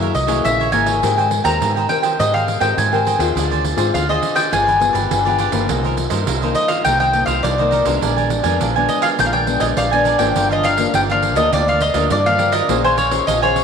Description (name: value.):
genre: samba and choro.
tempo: 103 BPM.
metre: 4/4.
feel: straight.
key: unclear.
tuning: A4 = 440 Hz.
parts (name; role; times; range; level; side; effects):
mandolin; melody; 0.0-13.6 s; C5 to Bb5; -18 LUFS; left 1 dB; tape echo.
cavaquinho; accompaniment; 0.0-13.6 s; D4 to Ab5; -23 LUFS; right 8 dB; none.
nylon-string guitar; accompaniment; 0.0-13.6 s; G2 to C5; -22 LUFS; left 8 dB; none.
vintage muted fingered electric bass; bass; 0.0-13.6 s; G1 to Ab2; -22 LUFS; equal; none.
pandeiro; percussion; 0.0-13.6 s; none; -24 LUFS; right 9 dB; none.
room: wet echo chamber reverb, RT60 2.1 s.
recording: 1960s-style stereo with parts hard left and right.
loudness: -14 LUFS.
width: side -6 dB against mid.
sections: 0.0-10.4 A section; 10.4-13.6 B section.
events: none.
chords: 0.0 Gb9; 1.0 Abmaj9; 3.4 Dm7b5; 4.5 G7b9; 5.7 Cm11; 8.0 Bb7b9; 10.4 Gm7; 12.7 Bbm9.